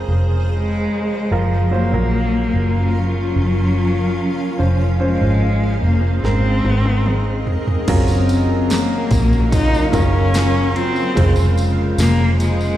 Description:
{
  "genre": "pop ballad",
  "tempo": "73 BPM",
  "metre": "4/4",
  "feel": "straight",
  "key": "unclear",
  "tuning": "A4 = 440 Hz",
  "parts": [
    { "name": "clear grand piano", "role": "accompaniment", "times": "0.0-12.8 s", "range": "Ab2 to C5", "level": "-23 LUFS", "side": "right 2 dB", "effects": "slapback echo" },
    { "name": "granular cloud pad", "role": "sustained chords", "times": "0.0-12.8 s", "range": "Db3 to F5", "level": "-24 LUFS", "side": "left 1 dB", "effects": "built-in reverb" },
    { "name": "vintage muted fingered electric bass", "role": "bass", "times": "0.0-12.8 s", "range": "F1 to Bb1", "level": "-17 LUFS", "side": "equal", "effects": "none" },
    { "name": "rich cello", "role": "melody", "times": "0.5-12.8 s", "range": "F3 to Eb4", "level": "-21 LUFS", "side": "left 2 dB", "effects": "slapback echo" },
    { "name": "pop drum kit", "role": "drums", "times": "6.2-12.6 s", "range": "crash cymbal, kick drum, ride cymbal, snare drum, toms", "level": "-21 LUFS", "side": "equal", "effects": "none" },
    { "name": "picked steel-string acoustic guitar", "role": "arpeggios", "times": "7.9-12.8 s", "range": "F2 to F4", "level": "-26 LUFS", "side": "equal", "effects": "slapback echo" },
    { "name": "tambourine", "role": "percussion", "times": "8.1-12.8 s", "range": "none", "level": "-35 LUFS", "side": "left 2 dB", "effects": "slapback echo" }
  ],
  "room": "light reverb, small room ambience",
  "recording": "live gig heard through the venue's PA, recital hall reverb",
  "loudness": "-15 LUFS",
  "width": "side -13 dB against mid",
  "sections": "0.0-7.9 A section; 7.9-12.8 B section",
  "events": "drum fill 6.2-7.9",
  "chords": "0.0 Dbmaj7/F; 1.3 Gbmaj7; 4.6 Dbmaj7/F; 6.2 Abadd9; 7.9 Gbmaj7; 11.2 Dbmaj7/F",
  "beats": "0.49 | 1.31 2.13 2.95 3.77 | 4.60 5.42 6.24 7.06 | 7.88 8.71 9.53 10.35 | 11.17 11.99"
}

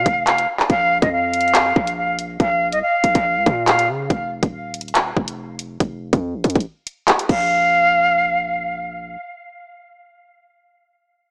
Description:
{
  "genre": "hip hop, drill",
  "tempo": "141 BPM",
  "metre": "4/4",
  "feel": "half-time",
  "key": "Bb harmonic minor",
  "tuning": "A4 = 440 Hz",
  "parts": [
    { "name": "silver concert flute", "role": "melody", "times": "0.0-3.9, 7.3-8.7 s", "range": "Eb5 to F5", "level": "-17 LUFS", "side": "equal", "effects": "low-pass filter, diffuse ambient delay" },
    { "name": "hard-hitting 808-style bass", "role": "bass", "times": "0.0-9.2 s", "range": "Eb1 to Db3", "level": "-25 LUFS", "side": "equal", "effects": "none" },
    { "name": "drill drum kit", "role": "drums", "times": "0.1-7.4 s", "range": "crash cymbal, handclaps, hi-hat, kick drum", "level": "-18 LUFS", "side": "equal", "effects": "none" }
  ],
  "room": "moderate plate reverb, RT60 1.5 s",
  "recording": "dreamy mix soaked in reverb, small speaker sound",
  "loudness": "-16 LUFS",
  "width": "side -34 dB against mid",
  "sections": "0.0-7.5 A section; 7.5-10.9 B section",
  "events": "break 4.1-7.5; kick muted 6.7-7.5",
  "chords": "0.0 N.C.; 0.7 Bb5; 4.1 N.C.; 7.3 Bb5",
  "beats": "0.27 | 0.70 1.12 1.55 1.97 | 2.40 2.83 3.25 3.68 | 4.10 4.53 4.95 5.38 | 5.80 6.23 6.66 7.08 | 7.51 7.93 8.36 8.78"
}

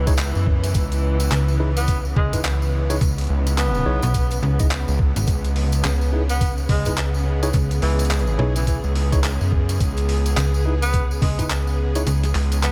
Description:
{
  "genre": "glitch hop",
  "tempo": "106 BPM",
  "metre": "4/4",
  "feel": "swing 60% on 16ths",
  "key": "C# minor",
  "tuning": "A4 = 440 Hz",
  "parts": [
    { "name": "warm studio string section", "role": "sustained chords", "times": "0.0-12.7 s", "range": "C#3 to G#4", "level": "-30 LUFS", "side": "equal", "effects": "vintage 12-bit sampler grit, sidechain pumping" },
    { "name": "gritty driven synth bass", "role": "bass", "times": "0.0-12.7 s", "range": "B1 to F#2", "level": "-23 LUFS", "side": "equal", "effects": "none" },
    { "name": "tine electric piano", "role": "stabs", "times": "0.1-12.0 s", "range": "D#4 to D#5", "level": "-34 LUFS", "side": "equal", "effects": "none" },
    { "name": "boom bap sampler-style drum kit", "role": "drums", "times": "0.1-12.7 s", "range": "handclaps, hi-hat, snare drum", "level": "-32 LUFS", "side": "equal", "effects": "none" },
    { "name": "electronic kick drum", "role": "drums", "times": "0.1-11.5 s", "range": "none", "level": "-24 LUFS", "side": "equal", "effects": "none" },
    { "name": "tambourine", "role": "percussion", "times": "0.1-12.7 s", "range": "none", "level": "-38 LUFS", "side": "equal", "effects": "none" },
    { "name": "slap-like FM bass", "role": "bass", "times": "1.3-12.3 s", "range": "G#1 to C#2", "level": "-23 LUFS", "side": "equal", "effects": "none" },
    { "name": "breathy tenor saxophone", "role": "melody", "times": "1.8-12.7 s", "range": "E3 to B3", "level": "-33 LUFS", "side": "equal", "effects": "tape echo" }
  ],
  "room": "light reverb",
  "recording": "none",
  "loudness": "-20 LUFS",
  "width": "mono",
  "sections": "0.0-12.7 A section",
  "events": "kick drops out 12.1-12.7",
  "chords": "0.0 C#m7",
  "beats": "0.18 | 0.75 1.31 1.88 2.45 | 3.01 3.58 4.14 4.71 | 5.28 5.84 6.41 6.97 | 7.54 8.11 8.67 9.24 | 9.80 10.37 10.94 11.50 | 12.07 12.63"
}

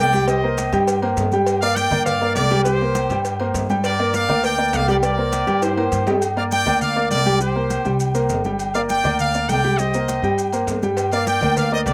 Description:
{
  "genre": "latin, salsa",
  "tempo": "202 BPM",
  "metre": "4/4",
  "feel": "straight",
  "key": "G minor",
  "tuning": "A4 = 441 Hz",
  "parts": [
    { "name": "bright trumpet section", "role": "melody", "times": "0.0-11.9 s", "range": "G4 to G5", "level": "-24 LUFS", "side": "equal", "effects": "slapback echo" },
    { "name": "dark grand piano", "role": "accompaniment", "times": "0.0-11.9 s", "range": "G3 to G5", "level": "-24 LUFS", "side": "equal", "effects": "none" },
    { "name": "upright bass", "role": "bass", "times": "0.0-11.9 s", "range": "G1 to G2", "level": "-27 LUFS", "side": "equal", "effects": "none" },
    { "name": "agogo bells and timbales", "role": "percussion", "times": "0.1-11.9 s", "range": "none", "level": "-29 LUFS", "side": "equal", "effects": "slapback echo" },
    { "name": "congas", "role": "percussion", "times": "0.1-11.9 s", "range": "none", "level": "-32 LUFS", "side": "equal", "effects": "none" },
    { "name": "cowbell", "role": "percussion", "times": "0.1-6.1, 11.0-11.9 s", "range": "none", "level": "-32 LUFS", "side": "equal", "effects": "none" },
    { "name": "maracas", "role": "percussion", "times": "0.1-11.9 s", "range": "none", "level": "-37 LUFS", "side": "equal", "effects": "none" }
  ],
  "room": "little or no reverb",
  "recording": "recorded outdoors, with no room sound",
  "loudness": "-19 LUFS",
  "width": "mono",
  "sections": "0.0-6.2 A section; 6.2-11.9 A section",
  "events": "drum fill 5.6-6.2",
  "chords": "0.3 Cm7; 1.5 Gm7; 2.7 C5; 3.8 Gm7; 5.0 C5; 6.2 Gm7; 7.4 C5; 8.6 Gm7; 9.8 Cm7; 11.0 Gm",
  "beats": "| 0.28 0.58 0.88 1.17 | 1.47 1.77 2.06 2.36 | 2.66 2.95 3.25 3.55 | 3.84 4.14 4.44 4.74 | 5.03 5.33 5.63 5.92 | 6.22 6.52 6.81 7.11 | 7.41 7.71 8.00 8.30 | 8.60 8.89 9.19 9.49 | 9.79 10.08 10.38 10.68 | 10.97 11.27 11.57 11.87"
}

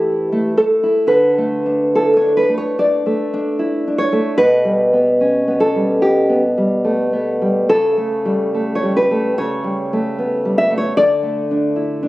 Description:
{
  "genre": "romantic piece for solo classical guitar",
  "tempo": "73 BPM",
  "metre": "4/4",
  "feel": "uneven beats, rubato",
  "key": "unclear",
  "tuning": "A4 = 440 Hz",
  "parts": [
    { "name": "nylon-string guitar", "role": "solo", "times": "0.0-12.1 s", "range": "B2 to E5", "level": "-14 LUFS", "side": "equal", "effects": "none" }
  ],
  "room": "light reverb",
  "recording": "recorded on a phone in the room, studio reverb, compression",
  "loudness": "-14 LUFS",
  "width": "side -17 dB against mid",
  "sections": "0.0-1.0 A section; 1.0-12.1 B section",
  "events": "none",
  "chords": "0.0 A5; 1.0 D5; 4.4 G/B; 7.7 A7/C#; 11.0 D5",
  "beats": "0.07 | 1.05 1.93 2.77 3.59 | 4.39 5.20 6.03 6.85 | 7.69 8.55 9.37 10.16 | 10.95 11.75"
}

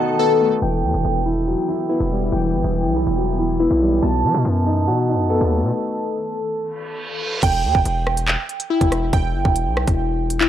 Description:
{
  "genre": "hip hop, drill",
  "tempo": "141 BPM",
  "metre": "4/4",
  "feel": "half-time",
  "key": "E harmonic minor",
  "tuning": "A4 = 440 Hz",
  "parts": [
    { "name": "dark grand piano", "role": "accompaniment", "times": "0.0-6.6 s", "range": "B2 to F#4", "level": "-22 LUFS", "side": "left 1 dB", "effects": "none" },
    { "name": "granular cloud pad", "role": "sustained chords", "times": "0.0-5.7 s", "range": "D#3 to A4", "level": "-29 LUFS", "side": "equal", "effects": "built-in reverb" },
    { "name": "glassy digital keys", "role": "arpeggios", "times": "0.0-10.5 s", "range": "E4 to A5", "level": "-22 LUFS", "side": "equal", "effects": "chorus, tape echo" },
    { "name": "distorted 808-style bass", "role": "bass", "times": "0.6-10.5 s", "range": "E1 to F#3", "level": "-21 LUFS", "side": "equal", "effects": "distortion" },
    { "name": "reverse cymbal", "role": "sound effects", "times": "6.8-7.4 s", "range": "none", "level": "-28 LUFS", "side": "right 3 dB", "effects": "none" },
    { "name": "drill drum kit", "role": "drums", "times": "7.4-10.5 s", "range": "crash cymbal, handclaps, hi-hat, kick drum, rim click", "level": "-20 LUFS", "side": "equal", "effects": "none" }
  ],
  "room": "little or no reverb",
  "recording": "dry, gritty hardware recording, low-pass filter",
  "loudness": "-17 LUFS",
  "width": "side -11 dB against mid",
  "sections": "0.6-7.4 A section; 7.4-10.5 B section",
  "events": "break 0.0-0.6; filter sweep 0.6-7.4; stop 5.7-7.4; reverse cymbal 6.8-7.4",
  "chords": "0.0 B7; 0.6 Emadd9; 4.0 B7; 7.4 Em",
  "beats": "0.20 | 0.62 1.05 1.47 1.90 | 2.32 2.75 3.17 3.60 | 4.02 4.45 4.88 5.30 | 5.73 6.15 6.58 7.00 | 7.43 7.85 8.28 8.71 | 9.13 9.56 9.98 10.41"
}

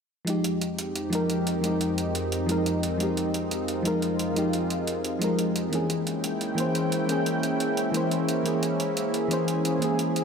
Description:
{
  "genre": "liquid drum and bass",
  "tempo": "176 BPM",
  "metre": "4/4",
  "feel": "straight",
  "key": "F minor",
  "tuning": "A4 = 438 Hz",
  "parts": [
    { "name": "mellow FM electric piano", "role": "accompaniment", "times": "0.2-10.2 s", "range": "E3 to C5", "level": "-26 LUFS", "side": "left 1 dB", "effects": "chorus, tremolo, ping-pong delay" },
    { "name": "lush unison pad", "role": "sustained chords", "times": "0.5-10.2 s", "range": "F2 to G5", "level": "-28 LUFS", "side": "right 1 dB", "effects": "chorus" },
    { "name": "electronic hi-hat", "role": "drums", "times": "0.3-10.2 s", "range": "none", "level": "-34 LUFS", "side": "right 2 dB", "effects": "none" }
  ],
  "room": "wet lush hall reverb, RT60 1.7 s, digital ambience",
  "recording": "dreamy mix soaked in reverb",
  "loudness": "-24 LUFS",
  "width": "side -6 dB against mid",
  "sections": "0.3-10.2 A section",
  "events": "none",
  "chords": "0.3 Fm9; 5.7 C7b9b13",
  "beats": "| 0.27 0.61 0.96 1.30 | 1.64 1.98 2.32 2.66 | 3.00 3.34 3.68 4.02 | 4.37 4.71 5.05 5.39 | 5.73 6.07 6.41 6.75 | 7.09 7.43 7.77 8.12 | 8.46 8.80 9.14 9.48 | 9.82 10.16"
}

